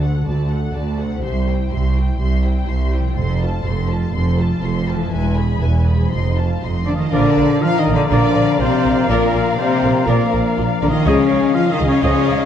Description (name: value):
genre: cinematic, heroic adventure film score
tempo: 122 BPM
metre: 4/4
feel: straight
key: Bb mixolydian from 7.1 s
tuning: A4 = 438 Hz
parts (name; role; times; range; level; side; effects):
- dark symphonic violin section; melody; 0.0-12.5 s; F5 to C6; -30 LUFS; left 4 dB; none
- rich symphonic violin section; second line; 0.0-12.5 s; A4 to G#5; -29 LUFS; left 4 dB; none
- rich symphonic viola section; accompaniment; 0.0-12.5 s; Eb4 to Eb5; -27 LUFS; equal; none
- concert harp; arpeggios; 0.0-12.5 s; Bb2 to Bb5; -27 LUFS; left 10 dB; none
- rich studio double bass section; bass; 0.0-12.4 s; E1 to D2; -19 LUFS; right 2 dB; none
- rich symphonic cello section; bass; 0.0-12.5 s; C2 to F3; -21 LUFS; right 2 dB; none
- clear oboe; second line; 6.9-12.5 s; Bb4 to F5; -28 LUFS; right 1 dB; none
- dark French horn section; sustained chords; 6.9-12.5 s; Bb3 to F4; -19 LUFS; left 5 dB; none
- flute section; second line; 7.1-12.5 s; F5 to Bb5; -29 LUFS; left 2 dB; none
- mellow clarinet; second line; 7.1-12.5 s; Eb5 to F5; -27 LUFS; left 2 dB; none
- warm trombone section; sustained chords; 7.1-12.2 s; F3 to Bb3; -29 LUFS; right 1 dB; none
- dark trumpet; stabs; 7.1-12.2 s; D5 to Eb5; -27 LUFS; equal; none
room: moderate scoring stage reverb, RT60 1.6 s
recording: dark, warm production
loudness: -15 LUFS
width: side -9 dB against mid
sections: 0.0-7.1 A section; 7.1-12.5 B section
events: none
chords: 0.0 D; 1.2 C; 3.2 F; 5.1 E; 6.1 F7; 7.1 Bb; 11.1 Dbadd9